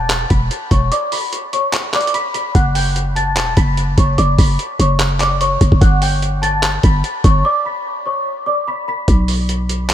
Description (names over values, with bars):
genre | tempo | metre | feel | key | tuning
hip hop, trap | 147 BPM | 4/4 | half-time | unclear | A4 = 439 Hz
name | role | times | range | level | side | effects
celesta | melody | 0.0-9.1 s | C#5 to B6 | -19 LUFS | left 1 dB | lush chorus, ping-pong delay
growling 808-style bass | bass | 0.0-9.9 s | E1 to B1 | -16 LUFS | equal | none
dusty soul sampler-style drum kit | drums | 0.1-9.9 s | handclaps, hi-hat, kick drum | -16 LUFS | equal | none
room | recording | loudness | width
light reverb | none | -13 LUFS | side -11 dB against mid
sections
0.0-9.1 A section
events
break 0.9-2.5, 7.4-9.1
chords
0.0 E7(no3); 5.8 G; 9.1 N.C.